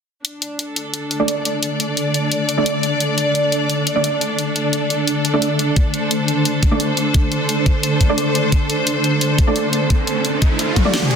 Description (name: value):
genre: dark technical drum and bass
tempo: 174 BPM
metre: 4/4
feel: straight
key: unclear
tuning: A4 = 438 Hz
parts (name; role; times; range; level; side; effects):
- swarming drone; sustained chords; 0.9-11.2 s; D3 to D5; -21 LUFS; equal; built-in reverb, sidechain pumping
- drum and bass drum kit; drums; 0.2-11.2 s; hi-hat, snare drum, toms; -22 LUFS; left 2 dB; none
- rich studio string section; texture; 0.2-11.2 s; D4 to D5; -22 LUFS; left 1 dB; sidechain pumping
- orchestra-hit-like synth stab; stabs; 1.2-11.2 s; A3 to D5; -22 LUFS; right 3 dB; built-in reverb, ping-pong delay
- electronic kick drum; drums; 5.8-10.8 s; none; -15 LUFS; equal; none
- riser; sound effects; 9.2-11.2 s; none; -24 LUFS; right 2 dB; none
room: moderate lush hall reverb, RT60 2.0 s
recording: dense, heavily limited modern master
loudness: -16 LUFS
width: side -6 dB against mid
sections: 0.2-11.2 A section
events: riser 9.2-11.2; drum fill 10.8-11.2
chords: 0.2 D5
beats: | 0.25 0.59 0.94 1.28 | 1.63 1.97 2.32 2.66 | 3.01 3.35 3.70 4.04 | 4.38 4.73 5.08 5.42 | 5.76 6.11 6.45 6.80 | 7.14 7.49 7.83 8.18 | 8.52 8.87 9.21 9.56 | 9.90 10.25 10.59 10.94